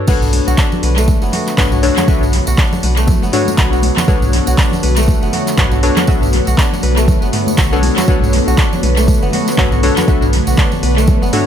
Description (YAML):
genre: afro house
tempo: 120 BPM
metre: 4/4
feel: swing 58% on 16ths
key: B minor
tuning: A4 = 439 Hz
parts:
  - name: warm analog keys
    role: stabs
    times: 0.0-11.5 s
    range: D4 to E5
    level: -20 LUFS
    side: left 5 dB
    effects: chorus, vintage 12-bit sampler grit, sidechain pumping, tape echo
  - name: ethereal airy pad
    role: sustained chords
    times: 0.8-11.5 s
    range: D3 to C#5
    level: -20 LUFS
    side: equal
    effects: ensemble chorus, built-in reverb, sidechain pumping
  - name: kora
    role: arpeggios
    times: 0.1-11.5 s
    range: A3 to B4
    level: -22 LUFS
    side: right 1 dB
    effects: sidechain pumping, tape echo
  - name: warm sub bass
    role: bass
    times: 0.1-11.3 s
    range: F#1 to B1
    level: -16 LUFS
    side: equal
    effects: sidechain pumping
  - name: afro-pop drum kit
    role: drums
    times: 0.1-11.4 s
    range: crash cymbal, handclaps, hi-hat, toms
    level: -20 LUFS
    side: equal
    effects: studio reverb, tape echo
  - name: electronic kick drum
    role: drums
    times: 0.1-11.2 s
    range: none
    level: -14 LUFS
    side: equal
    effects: studio reverb
  - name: congas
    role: percussion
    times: 0.1-11.3 s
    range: none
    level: -23 LUFS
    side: left 1 dB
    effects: tape echo
  - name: tambourine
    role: percussion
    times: 0.1-11.3 s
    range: none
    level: -28 LUFS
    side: right 2 dB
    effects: tape echo
room: little or no reverb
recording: echo-heavy mix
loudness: -11 LUFS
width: side -9 dB against mid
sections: 0.1-11.5 A section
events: drop 0.1-11.5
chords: 0.1 Bm9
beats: | 0.08 0.58 1.08 1.58 | 2.08 2.58 3.08 3.58 | 4.08 4.58 5.08 5.58 | 6.08 6.58 7.08 7.58 | 8.08 8.58 9.08 9.58 | 10.08 10.58 11.08